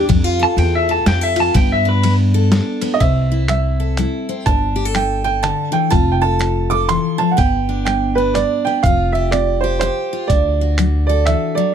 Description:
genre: honky-tonk and classic country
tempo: 124 BPM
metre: 3/4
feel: swing 61% on 8ths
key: C major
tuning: A4 = 440 Hz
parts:
  - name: pedal steel guitar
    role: melody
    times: 0.0-2.1 s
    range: B4 to A5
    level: -18 LUFS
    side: left 1 dB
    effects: none
  - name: picked steel-string acoustic guitar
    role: accompaniment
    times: 0.0-11.7 s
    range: G2 to A4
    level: -20 LUFS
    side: left 3 dB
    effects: none
  - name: upright bass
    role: bass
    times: 0.0-11.3 s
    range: F1 to G2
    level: -18 LUFS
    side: equal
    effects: none
  - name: boom bap sampler-style drum kit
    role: drums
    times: 0.1-11.4 s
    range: finger snaps, hi-hat, kick drum, ride cymbal, snare drum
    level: -19 LUFS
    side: equal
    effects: none
  - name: clear upright piano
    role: second line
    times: 2.9-11.7 s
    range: B4 to D6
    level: -19 LUFS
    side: right 7 dB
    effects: none
room: little or no reverb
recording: close, detailed microphones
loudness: -14 LUFS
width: side -8 dB against mid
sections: 0.0-3.0 A section; 3.0-11.7 B section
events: pedal steel guitar solo 0.0-3.0; upright piano solo 3.0-11.7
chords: 0.1 F; 1.6 Gadd9; 3.0 C6; 4.5 Gsus2; 5.9 F; 7.4 G; 8.8 Fsus2; 10.3 D

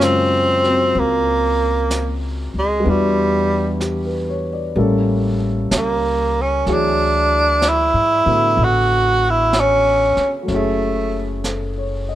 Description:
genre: jazz ballad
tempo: 63 BPM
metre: 4/4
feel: swing 67% on 8ths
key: unclear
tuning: A4 = 440 Hz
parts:
  - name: breathy tenor saxophone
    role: melody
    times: 0.0-11.4 s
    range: G3 to F#4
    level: -16 LUFS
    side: right 1 dB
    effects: none
  - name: warm grand piano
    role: accompaniment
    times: 0.0-12.2 s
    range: C#3 to D#5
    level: -22 LUFS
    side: left 1 dB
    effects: none
  - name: upright bass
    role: bass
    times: 0.0-12.2 s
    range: F#1 to A2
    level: -22 LUFS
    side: left 1 dB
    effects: none
  - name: jazz brush drum kit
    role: drums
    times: 0.0-12.2 s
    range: brushed snare drum, hi-hat, snare drum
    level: -26 LUFS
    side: right 2 dB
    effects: none
room: light reverb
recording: minimal, uncompressed stereo recording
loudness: -15 LUFS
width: side -13 dB against mid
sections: 0.0-12.2 A section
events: none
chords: 0.0 F#maj7; 2.8 Em9; 4.8 A7b9; 6.7 Dmaj9#11; 10.5 F#m9

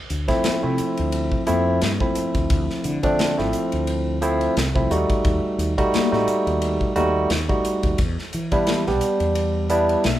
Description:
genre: electric jazz fusion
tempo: 87 BPM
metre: 4/4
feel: swing 56% on 16ths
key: D dorian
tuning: A4 = 441 Hz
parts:
  - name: mellow fretless electric bass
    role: bass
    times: 0.1-10.2 s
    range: A1 to E3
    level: -26 LUFS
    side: equal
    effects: none
  - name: modern studio drum kit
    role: drums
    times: 0.1-10.2 s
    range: hi-hat, kick drum, ride cymbal, snare drum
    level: -26 LUFS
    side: equal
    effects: none
  - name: barky tine electric piano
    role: accompaniment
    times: 0.3-10.2 s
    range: F3 to A5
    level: -21 LUFS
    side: right 1 dB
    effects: overdrive
  - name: congas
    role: percussion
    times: 0.5-10.2 s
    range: none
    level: -30 LUFS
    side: left 13 dB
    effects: none
room: moderate large studio reverb, RT60 1.2 s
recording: band playing live in one room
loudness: -19 LUFS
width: side -13 dB against mid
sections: 0.0-10.2 A section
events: tine electric piano fill 9.4-10.2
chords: 0.0 Dm9; 4.9 D#dim; 8.0 Em7

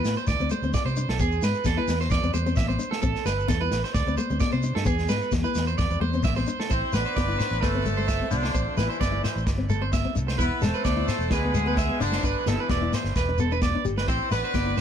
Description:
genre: highlife guitar band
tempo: 130 BPM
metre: 4/4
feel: straight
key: A minor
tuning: A4 = 440 Hz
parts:
  - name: nylon-string guitar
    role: accompaniment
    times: 0.0-14.8 s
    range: G#3 to G4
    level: -32 LUFS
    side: left 4 dB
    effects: none
  - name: electric guitar at the edge of break-up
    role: arpeggios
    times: 0.0-14.8 s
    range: G#4 to E5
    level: -29 LUFS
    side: right 5 dB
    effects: tape echo
  - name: fingered electric bass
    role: bass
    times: 0.0-14.7 s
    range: E1 to C3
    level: -28 LUFS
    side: equal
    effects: none
  - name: shekere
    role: percussion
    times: 0.0-14.8 s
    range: none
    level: -31 LUFS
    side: left 3 dB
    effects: none
  - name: vintage drum kit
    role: drums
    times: 0.1-14.8 s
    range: kick drum, snare drum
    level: -29 LUFS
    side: equal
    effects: none
  - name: congas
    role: percussion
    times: 0.3-14.7 s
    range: none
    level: -33 LUFS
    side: left 7 dB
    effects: none
  - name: warm horn section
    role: melody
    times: 6.7-14.8 s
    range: D3 to C5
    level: -30 LUFS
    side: left 1 dB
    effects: tape echo
room: light reverb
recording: none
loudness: -22 LUFS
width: side -8 dB against mid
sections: 0.0-6.7 A section; 6.7-14.8 B section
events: none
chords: 0.3 D5; 1.2 E; 2.1 Cadd9/E; 3.0 Am7; 4.0 D5; 4.9 E; 5.8 Cadd9/E; 6.7 Am; 10.4 E; 12.2 G; 14.1 Am

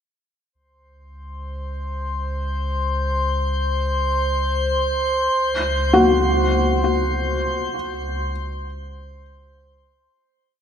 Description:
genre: ambient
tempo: 50 BPM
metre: 4/4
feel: straight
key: unclear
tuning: A4 = 441 Hz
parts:
  - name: warm sub bass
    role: bass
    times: 0.5-10.1 s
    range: Db2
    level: -25 LUFS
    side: equal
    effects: none
  - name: drifting glass-harmonics texture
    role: texture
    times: 1.8-10.2 s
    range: C5 to C6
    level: -23 LUFS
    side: equal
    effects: chorus, built-in reverb
  - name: felt-muted upright piano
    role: arpeggios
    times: 5.9-8.3 s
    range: Gb4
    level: -19 LUFS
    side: left 1 dB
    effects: ping-pong delay
room: wet cathedral reverb, RT60 5.7 s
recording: in a vast, echoing space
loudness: -19 LUFS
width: side -8 dB against mid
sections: 0.5-10.1 A section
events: fade-in on sub bass 0.5-10.1; fade-in on synth texture 0.5-10.1; fade-out 5.3-10.1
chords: 0.5 N.C.; 5.3 Gb5/Db

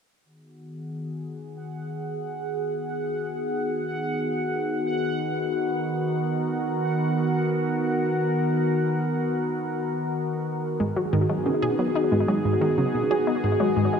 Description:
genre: ambient, sequencer-driven space music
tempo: free time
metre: none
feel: none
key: G# minor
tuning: A4 = 440 Hz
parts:
  - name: phased analog pad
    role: sustained chords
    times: 0.7-14.0 s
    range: D#3 to A#4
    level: -25 LUFS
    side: equal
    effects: phaser, chorus
  - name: bubbling stepped-filter texture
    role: texture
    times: 0.2-10.8 s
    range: F#5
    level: -34 LUFS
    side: equal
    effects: chorus, built-in reverb
  - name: wide unison pluck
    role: arpeggios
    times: 10.8-13.9 s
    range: D#3 to G#4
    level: -27 LUFS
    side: moving between left 5 dB and right 1 dB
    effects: auto-pan, tape echo
  - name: analog pluck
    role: riff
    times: 10.8-14.0 s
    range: G#2 to D#4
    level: -26 LUFS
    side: right 1 dB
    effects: chorus, tape echo
room: wet huge ambient reverb, RT60 7.9 s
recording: none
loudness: -23 LUFS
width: side -7 dB against mid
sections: 0.2-10.8 A section; 10.8-14.0 B section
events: fade-in on synth texture 0.2-10.8; filter sweep on analog synth pad 0.2-10.8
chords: 0.2 G#m7

